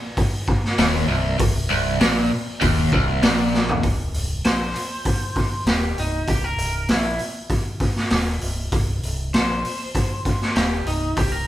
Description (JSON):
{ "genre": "blues rock power trio and southern rock", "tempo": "98 BPM", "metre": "4/4", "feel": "straight", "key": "unclear", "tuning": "A4 = 440 Hz", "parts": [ { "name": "raw garage drum kit", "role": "drums", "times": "0.2-11.3 s", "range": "hi-hat, kick drum, snare drum, toms", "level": "-21 LUFS", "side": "equal", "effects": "none" }, { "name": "overdriven electric guitar", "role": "riff", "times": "0.8-3.8 s", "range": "C2 to Bb2", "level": "-21 LUFS", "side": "equal", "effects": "tremolo" }, { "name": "growling fingered electric bass", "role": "bass", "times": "0.8-11.5 s", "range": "C1 to Bb1", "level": "-26 LUFS", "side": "equal", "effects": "overdrive" }, { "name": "lightly driven lead guitar", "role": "melody", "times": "4.5-11.5 s", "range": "Eb4 to C5", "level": "-27 LUFS", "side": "left 1 dB", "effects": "none" } ], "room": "light reverb", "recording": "band playing live in one room", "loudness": "-19 LUFS", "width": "side -13 dB against mid", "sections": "0.0-3.8 A section; 3.8-11.5 B section", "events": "drum fill 3.5-3.8; lead electric guitar solo 3.8-11.5", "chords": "0.0 Cm7" }